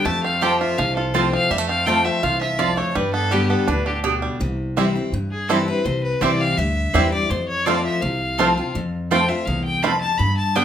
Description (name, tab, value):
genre	bluegrass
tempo	166 BPM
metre	4/4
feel	straight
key	unclear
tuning	A4 = 439 Hz
part	clear fiddle	melody	0.0-10.6 s	G4 to B5	-23 LUFS	left 2 dB	none
part	picked steel-string acoustic guitar	accompaniment	0.0-10.6 s	E2 to G4	-24 LUFS	left 2 dB	none
part	bluegrass banjo	arpeggios	0.0-10.6 s	D3 to G4	-25 LUFS	right 6 dB	none
part	upright bass	bass	0.1-10.6 s	C2 to G2	-26 LUFS	equal	none
part	mandolin	stabs	0.4-10.6 s	B3 to A5	-23 LUFS	right 4 dB	none
room	moderate large studio reverb, RT60 0.9 s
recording	minimal, uncompressed stereo recording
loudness	-18 LUFS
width	side -9 dB against mid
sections	0.0-4.4 A section; 4.4-10.6 B section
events	none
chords	0.1 F; 3.0 G; 4.4 C; 7.3 F